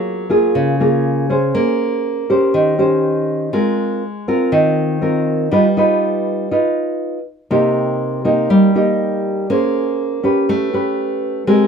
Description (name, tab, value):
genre	bossa nova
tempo	121 BPM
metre	4/4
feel	straight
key	unclear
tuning	A4 = 440 Hz
part	nylon-string guitar	solo	0.0-11.7 s	C3 to C5	-14 LUFS	equal	none
room	light reverb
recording	close, detailed microphones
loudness	-14 LUFS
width	side -6 dB against mid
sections	0.0-11.7 A section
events	none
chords	0.0 Gbmaj9; 1.5 Bbm9; 2.5 Eb6; 3.5 Ab69; 5.5 G7b13; 7.5 Cm7; 9.5 Bbm9; 10.5 A9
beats	0.05 0.54 1.04 | 1.54 2.04 2.53 3.03 | 3.53 4.02 4.52 5.02 | 5.51 6.01 6.51 7.00 | 7.50 8.00 8.49 8.99 | 9.49 9.98 10.48 10.98 | 11.47